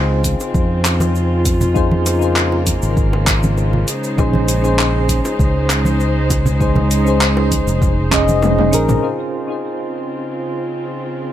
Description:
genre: sunset chillout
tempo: 99 BPM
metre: 4/4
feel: straight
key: Db major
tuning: A4 = 437 Hz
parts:
  - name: soft electric-piano-like synth keys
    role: accompaniment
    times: 0.0-11.3 s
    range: Db3 to Eb5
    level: -20 LUFS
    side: equal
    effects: chorus, tremolo, auto-pan, vintage 12-bit sampler grit, ping-pong delay
  - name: warm chamber string section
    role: sustained chords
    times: 0.0-11.3 s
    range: Db3 to C5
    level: -22 LUFS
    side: equal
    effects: low-pass filter
  - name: fingered electric bass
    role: bass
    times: 0.0-9.0 s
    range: F1 to F2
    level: -17 LUFS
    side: equal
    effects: none
  - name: deep house drum kit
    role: drums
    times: 0.2-9.0 s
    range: cabasa, handclaps, hi-hat, toms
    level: -20 LUFS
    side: equal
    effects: none
  - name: electronic kick drum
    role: drums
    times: 0.2-8.2 s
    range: none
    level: -19 LUFS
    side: equal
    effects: none
  - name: congas and bongos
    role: percussion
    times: 0.2-9.0 s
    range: none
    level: -22 LUFS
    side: right 1 dB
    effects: none
room: digital ambience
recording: none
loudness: -14 LUFS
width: side -11 dB against mid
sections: 0.0-9.0 A section; 9.0-11.3 B section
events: kick drops out 8.4-9.0; drum fill 8.4-9.0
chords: 0.0 Dbmaj7; 3.9 Bbm11; 9.0 Dbmaj7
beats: 0.55 1.15 | 1.76 2.37 2.97 3.58 | 4.18 4.79 5.40 6.00 | 6.61 7.21 7.82 8.43 | 9.03 9.64 10.24 10.85

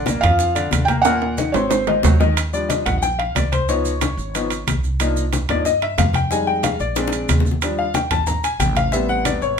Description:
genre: latin, salsa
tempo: 183 BPM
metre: 4/4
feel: straight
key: unclear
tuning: A4 = 440 Hz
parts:
  - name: felt-muted upright piano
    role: melody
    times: 0.0-2.2 s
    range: C5 to G5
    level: -20 LUFS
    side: right 3 dB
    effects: none
  - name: bright concert grand piano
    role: accompaniment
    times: 0.0-9.6 s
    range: Bb2 to C6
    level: -21 LUFS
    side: left 4 dB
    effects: none
  - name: upright bass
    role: bass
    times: 0.0-9.6 s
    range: Ab1 to G2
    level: -22 LUFS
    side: right 1 dB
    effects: none
  - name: bongos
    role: percussion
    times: 0.1-9.4 s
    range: none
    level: -28 LUFS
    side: left 6 dB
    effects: none
  - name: congas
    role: percussion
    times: 0.1-9.6 s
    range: none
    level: -25 LUFS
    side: left 1 dB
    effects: none
  - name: maracas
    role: percussion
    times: 0.1-9.6 s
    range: none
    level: -32 LUFS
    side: right 7 dB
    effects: none
  - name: timbales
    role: percussion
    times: 0.1-9.4 s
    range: none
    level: -24 LUFS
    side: right 9 dB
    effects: none
room: moderate studio reverb, RT60 0.6 s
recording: minimal, uncompressed stereo recording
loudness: -16 LUFS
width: side -6 dB against mid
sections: 0.0-2.4 A section; 2.4-9.6 B section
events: drum fill 1.1-2.4, 7.0-7.6; grand piano solo 2.4-9.6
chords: 0.0 Bb; 1.1 Ebm; 1.7 Ab7; 2.4 Ebmaj7; 3.7 Db9; 5.0 Cm11; 6.3 Fm7; 7.0 Bb7; 7.6 Ebmaj7; 8.9 Am7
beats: 0.07 0.40 0.73 | 1.06 1.39 1.71 2.04 | 2.37 2.70 3.03 3.36 | 3.69 4.01 4.34 4.67 | 5.00 5.33 5.66 5.98 | 6.31 6.64 6.97 7.29 | 7.62 7.95 8.28 8.60 | 8.93 9.26 9.58

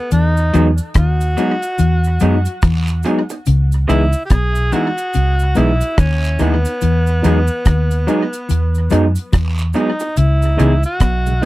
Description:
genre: lovers rock reggae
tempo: 72 BPM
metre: 4/4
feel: swing 61% on 16ths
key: E major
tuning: A4 = 437 Hz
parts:
  - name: breathy tenor saxophone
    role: melody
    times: 0.0-11.5 s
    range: B3 to G#4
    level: -22 LUFS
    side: equal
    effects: tape echo
  - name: mellow electric guitar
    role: riff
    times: 0.1-11.3 s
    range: B2 to F#3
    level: -21 LUFS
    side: left 5 dB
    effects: spring reverb
  - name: vintage muted fingered electric bass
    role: bass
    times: 0.1-11.4 s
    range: B1 to F#2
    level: -15 LUFS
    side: equal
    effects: none
  - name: deep reggae drum kit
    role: drums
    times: 0.1-11.5 s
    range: hi-hat, kick drum, rim click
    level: -16 LUFS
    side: equal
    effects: tape echo
  - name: cabasa and guiro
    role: percussion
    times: 0.1-11.5 s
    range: none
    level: -34 LUFS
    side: right 4 dB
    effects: none
  - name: tine electric piano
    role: accompaniment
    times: 0.5-11.5 s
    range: E3 to D#4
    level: -18 LUFS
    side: left 1 dB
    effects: medium stereo tremolo
  - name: electric guitar through a small old amp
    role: stabs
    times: 0.5-11.5 s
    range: F#3 to G#4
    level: -19 LUFS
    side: right 4 dB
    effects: none
  - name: mellow tonewheel organ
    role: accompaniment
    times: 10.4-11.5 s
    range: C#3 to E4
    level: -25 LUFS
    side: right 9 dB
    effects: slow rotary speaker
room: little or no reverb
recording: dry, close 1970s-style studio recording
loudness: -13 LUFS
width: side -17 dB against mid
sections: 0.0-11.5 A section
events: none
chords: 0.1 Emaj9; 3.5 C#m7; 6.8 Emaj9; 10.2 C#m7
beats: | 0.12 0.96 1.79 2.63 | 3.47 4.30 5.14 5.98 | 6.82 7.65 8.49 9.33 | 10.16 11.00

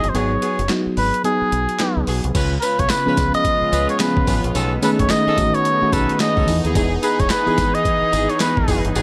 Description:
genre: R&B, new jack swing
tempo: 109 BPM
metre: 4/4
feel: swing 61% on 16ths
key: unclear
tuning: A4 = 440 Hz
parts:
  - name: trumpet with cup mute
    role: melody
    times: 0.0-8.8 s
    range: G#4 to D#5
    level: -23 LUFS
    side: equal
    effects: none
  - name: mellow FM electric piano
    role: accompaniment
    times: 0.0-9.0 s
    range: D#3 to B4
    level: -25 LUFS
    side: equal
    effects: chorus
  - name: warm horn section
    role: stabs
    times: 0.0-9.0 s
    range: B3 to B4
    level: -28 LUFS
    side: equal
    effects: none
  - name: deep dub fingered electric bass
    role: bass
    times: 0.0-9.0 s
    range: E1 to E2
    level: -26 LUFS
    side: equal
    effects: none
  - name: dusty soul sampler-style drum kit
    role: drums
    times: 0.0-9.0 s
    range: crash cymbal, handclaps, hi-hat, kick drum, snare drum, tambourine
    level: -26 LUFS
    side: equal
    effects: overdrive
  - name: sweeping resonant pad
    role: sustained chords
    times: 2.3-9.0 s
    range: C#3 to B4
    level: -28 LUFS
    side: equal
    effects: chorus
room: light reverb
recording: none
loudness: -18 LUFS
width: mono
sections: 0.0-2.3 A section; 2.3-9.0 B section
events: kick muted 0.1-2.3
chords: 0.1 G#m7; 2.3 C#7; 4.5 B13; 6.5 Emaj7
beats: | 0.15 0.70 1.25 1.80 | 2.35 2.90 3.45 4.00 | 4.55 5.10 5.65 6.20 | 6.75 7.30 7.85 8.40 | 8.95

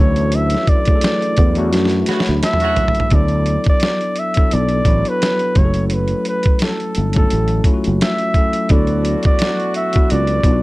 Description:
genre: R&B, neo-soul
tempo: 86 BPM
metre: 4/4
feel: swing 56% on 16ths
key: D major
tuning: A4 = 440 Hz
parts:
  - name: breathy flugelhorn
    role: melody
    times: 0.0-10.6 s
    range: A4 to E5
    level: -20 LUFS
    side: right 1 dB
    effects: none
  - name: tine electric piano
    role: accompaniment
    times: 0.0-10.6 s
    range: F#3 to B5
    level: -22 LUFS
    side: left 3 dB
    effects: none
  - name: percussive tonewheel organ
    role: sustained chords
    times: 0.0-3.1 s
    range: E3 to E4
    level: -28 LUFS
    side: right 1 dB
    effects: none
  - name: sustaining fretless electric bass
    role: bass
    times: 0.0-10.6 s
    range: F#1 to F#2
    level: -17 LUFS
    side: equal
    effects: lush chorus
  - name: boom bap sampler-style drum kit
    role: drums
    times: 0.2-10.6 s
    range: hi-hat, kick drum, snare drum, toms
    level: -16 LUFS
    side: equal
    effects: none
  - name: mellow horn section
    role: stabs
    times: 2.1-2.8, 8.7-10.6 s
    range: B2 to F#4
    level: -26 LUFS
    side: right 3 dB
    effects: none
room: light reverb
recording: dark, warm production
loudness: -14 LUFS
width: side -20 dB against mid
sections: 0.0-3.1 A section; 3.1-10.6 B section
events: band accent 0.3-3.1; drum fill 1.7-3.1; tine electric piano fill 1.7-3.1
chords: 0.0 Dmaj9; 3.1 D69; 5.6 F#m7; 8.7 D69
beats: | 0.33 1.02 1.72 2.42 | 3.12 3.82 4.51 5.21 | 5.91 6.61 7.30 8.00 | 8.70 9.40 10.10

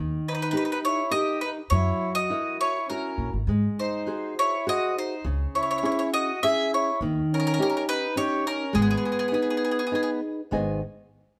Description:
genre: italian folk, Italian serenade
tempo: 102 BPM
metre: 3/4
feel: straight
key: G# minor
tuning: A4 = 440 Hz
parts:
  - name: nylon-string guitar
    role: accompaniment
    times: 0.0-10.8 s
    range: G#2 to G#5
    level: -30 LUFS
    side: equal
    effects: none
  - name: upright bass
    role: bass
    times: 0.0-10.8 s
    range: G#1 to G#2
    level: -30 LUFS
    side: equal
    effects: none
  - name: bowl-back mandolin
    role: melody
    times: 0.3-10.1 s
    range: G#4 to E5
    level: -29 LUFS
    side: equal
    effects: none
  - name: accordion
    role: second line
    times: 0.3-10.2 s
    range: B3 to G#4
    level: -33 LUFS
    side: equal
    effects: none
room: light reverb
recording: band playing live in one room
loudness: -26 LUFS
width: mono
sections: 0.0-10.5 A section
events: none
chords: 0.0 D#; 1.7 F#7; 3.5 G#7; 5.2 C#m; 7.0 D#7; 8.7 G#m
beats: 0.55 1.13 | 1.71 2.30 2.89 | 3.48 4.07 4.67 | 5.25 5.83 6.42 | 7.00 7.58 8.16 | 8.74 9.33 9.93 | 10.52

